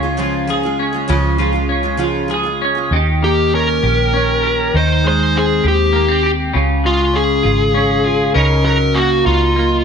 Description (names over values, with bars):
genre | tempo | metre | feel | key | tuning
six-eight pop ballad | 66 BPM (dotted quarters) | 6/8 | straight | unclear | A4 = 440 Hz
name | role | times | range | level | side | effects
twelve-string electric guitar | accompaniment | 0.0-9.8 s | Db3 to Ab4 | -17 LUFS | right 1 dB | double-tracked left and right
picked steel-string acoustic guitar | arpeggios | 0.0-2.9 s | Db3 to Ab4 | -22 LUFS | right 2 dB | none
vintage muted fingered electric bass | bass | 0.0-9.8 s | Ab1 to Eb2 | -19 LUFS | equal | none
smooth overdriven lead guitar | melody | 3.2-9.8 s | F4 to C5 | -16 LUFS | left 2 dB | none
room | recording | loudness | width
light reverb, digital ambience | nothing above 10.4 kHz | -13 LUFS | side -6 dB against mid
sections
0.0-2.9 A section; 2.9-9.8 B section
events
none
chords
0.0 Db; 2.9 Eb7; 4.7 Abmaj7/Eb; 6.5 Db; 8.4 Gb6/Db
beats
0.19 | 1.10 2.00 | 2.92 3.83 | 4.74 5.65 | 6.55 7.45 | 8.36 9.27